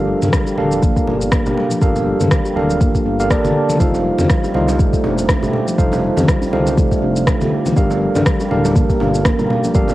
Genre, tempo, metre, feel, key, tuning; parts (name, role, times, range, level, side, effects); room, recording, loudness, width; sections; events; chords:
afro house; 121 BPM; 4/4; swing 56% on 16ths; G minor; A4 = 440 Hz
tine electric piano; stabs; 0.0-9.9 s; D4 to F5; -19 LUFS; right 2 dB; fast stereo tremolo, sidechain pumping, cassette tape, analog delay
smooth synth bass; bass; 0.0-9.9 s; D1 to G2; -22 LUFS; equal; tube saturation, sidechain pumping
handpan; arpeggios; 0.1-9.9 s; F3 to G4; -21 LUFS; equal; sidechain pumping, cassette tape, analog delay
electronic shaker and rim click; drums; 0.2-9.9 s; -24 LUFS; equal; cassette tape
congas; percussion; 0.2-9.9 s; -22 LUFS; left 2 dB
electronic kick drum; drums; 0.3-9.9 s; -16 LUFS; equal; cassette tape
djembe; percussion; 3.9-9.9 s; -29 LUFS; right 1 dB
light reverb, small room ambience; home recording on cassette; -13 LUFS; side -16 dB against mid
0.0-9.9 A section
0.0 Gm9; 3.8 F7; 7.8 Gm9